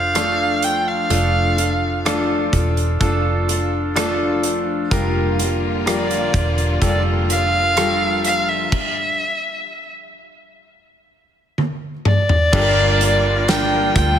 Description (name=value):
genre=pop ballad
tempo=63 BPM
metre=4/4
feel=straight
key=unclear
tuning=A4 = 440 Hz
part: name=warm violin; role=melody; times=0.0-14.2 s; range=D5 to G5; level=-20 LUFS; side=equal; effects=none
part: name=clear concert grand piano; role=accompaniment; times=0.0-14.2 s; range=G2 to C5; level=-23 LUFS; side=right 2 dB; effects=slapback echo
part: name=picked steel-string acoustic guitar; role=arpeggios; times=0.0-14.2 s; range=F3 to Bb4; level=-25 LUFS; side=left 6 dB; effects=slapback echo, ping-pong delay
part: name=vintage muted fingered electric bass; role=bass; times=0.0-14.2 s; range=E1 to D2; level=-22 LUFS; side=equal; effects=none
part: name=loose indie drum kit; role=drums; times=0.2-14.2 s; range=crash cymbal, hi-hat, kick drum, rim click, snare drum, toms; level=-21 LUFS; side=equal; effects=none
part: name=bright studio string section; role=sustained chords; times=4.9-14.2 s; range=D3 to F4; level=-27 LUFS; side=equal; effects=none
room=moderate concert hall reverb, RT60 2.4 s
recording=big arena sound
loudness=-16 LUFS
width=side -9 dB against mid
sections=0.0-12.5 A section; 12.5-14.2 B section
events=stop 8.7-12.5; drum fill 11.6-12.5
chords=0.0 Dm/F; 4.9 Gm7; 8.7 N.C.; 12.5 Gm7